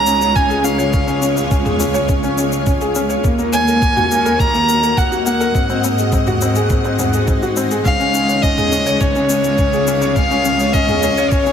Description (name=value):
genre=piano and strings electronica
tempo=104 BPM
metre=4/4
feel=straight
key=Db major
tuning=A4 = 442 Hz
part: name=dark violin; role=melody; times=0.0-11.5 s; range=Db5 to Bb5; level=-17 LUFS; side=equal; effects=none
part: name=granular cloud pad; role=sustained chords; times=0.0-11.5 s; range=Ab3 to Gb5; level=-22 LUFS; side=equal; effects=built-in reverb
part: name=felt-muted upright piano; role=riff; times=0.0-11.5 s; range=Bb3 to Db5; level=-20 LUFS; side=left 2 dB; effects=digital delay
part: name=rich symphonic cello section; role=bass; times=0.0-11.5 s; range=Db2 to Ab2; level=-20 LUFS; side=equal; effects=tube saturation, sidechain pumping
part: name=electronic shaker and toms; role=drums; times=0.1-11.5 s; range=none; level=-26 LUFS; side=left 1 dB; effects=overdrive
part: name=electronic kick drum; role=drums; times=0.4-11.4 s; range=none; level=-18 LUFS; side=equal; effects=none
room=light reverb, small room ambience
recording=none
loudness=-13 LUFS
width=side -8 dB against mid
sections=0.0-11.5 A section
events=none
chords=0.0 Db; 3.2 Ebm; 5.5 Ab7; 7.9 Db